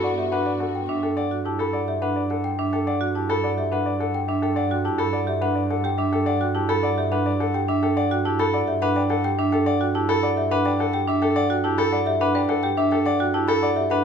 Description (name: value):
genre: classical, minimalist pattern music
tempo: 106 BPM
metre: 3/4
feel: straight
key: G major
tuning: A4 = 438 Hz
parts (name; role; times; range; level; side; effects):
- clear baby grand piano; melody; 0.0-14.0 s; G4 to E5; -26 LUFS; left 4 dB; none
- mellow French horn; second line; 0.0-1.0 s; F#4; -30 LUFS; equal; none
- rich studio string section; sustained chords; 0.0-1.0 s; B3 to F#4; -35 LUFS; left 1 dB; none
- large celesta; arpeggios; 0.0-14.0 s; E5 to B5; -26 LUFS; left 6 dB; none
- marimba with medium hard mallets; arpeggios; 0.0-14.0 s; D4 to B4; -24 LUFS; right 5 dB; none
- rich double bass; bass; 0.0-14.0 s; G2; -29 LUFS; right 3 dB; none
room: moderate large studio reverb, RT60 1.2 s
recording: minimal, uncompressed stereo recording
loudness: -20 LUFS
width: side -7 dB against mid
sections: 0.0-14.0 A section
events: none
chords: 0.0 Gmaj9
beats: 0.04 0.61 | 1.17 1.74 2.31 | 2.87 3.44 4.00 | 4.57 5.14 5.70 | 6.27 6.83 7.40 | 7.97 8.53 9.10 | 9.66 10.23 10.80 | 11.36 11.93 12.49 | 13.06 13.63